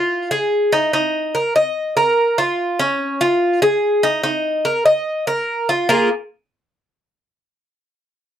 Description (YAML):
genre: latin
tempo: 145 BPM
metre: 4/4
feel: straight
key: Bb minor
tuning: A4 = 440 Hz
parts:
  - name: Cuban tres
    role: solo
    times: 0.0-6.1 s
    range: Bb3 to Eb5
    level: -16 LUFS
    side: equal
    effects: none
room: little or no reverb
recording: dry, close 1970s-style studio recording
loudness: -16 LUFS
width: side -10 dB against mid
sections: 0.0-5.9 A section; 5.9-7.5 B section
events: none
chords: 0.0 Dbadd9 (rootless); 0.9 Eb5; 2.6 Dbadd9; 4.2 Eb5; 5.9 Bb5